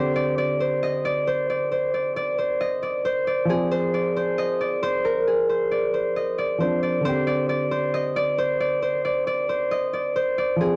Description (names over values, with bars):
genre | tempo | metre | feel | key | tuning
hip hop | 135 BPM | 4/4 | half-time | C minor | A4 = 437 Hz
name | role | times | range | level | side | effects
concert harp | melody | 0.0-10.8 s | Ab4 to Eb5 | -24 LUFS | equal | none
dark grand piano | accompaniment | 0.0-10.8 s | D3 to Ab4 | -31 LUFS | equal | none
room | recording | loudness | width
light reverb, studio ambience | dry, gritty hardware recording, cassette tape | -24 LUFS | mono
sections
0.0-10.8 A section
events
none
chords
0.0 Csus2; 3.5 Ab6; 7.0 Csus2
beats
0.38 0.83 1.27 | 1.72 2.16 2.61 3.05 | 3.50 3.94 4.38 4.83 | 5.27 5.72 6.16 6.61 | 7.05 7.50 7.94 8.38 | 8.83 9.27 9.72 10.16 | 10.61